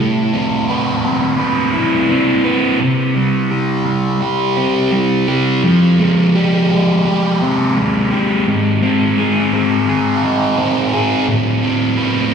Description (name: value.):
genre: rock.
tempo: 85 BPM.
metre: 4/4.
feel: straight.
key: unclear.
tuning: A4 = 440 Hz.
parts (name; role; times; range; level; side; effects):
fuzz guitar; solo; 0.0-12.3 s; G#2 to B4; -13 LUFS; equal; distortion, phaser, tape echo.
room: moderate plate reverb, RT60 2.8 s.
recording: echo-heavy mix, small room reverb.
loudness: -13 LUFS.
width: side -7 dB against mid.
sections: 0.0-12.3 A section.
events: none.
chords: 0.0 Amadd9; 2.8 C5; 5.6 Fmadd9; 8.5 G#; 11.3 Amadd9.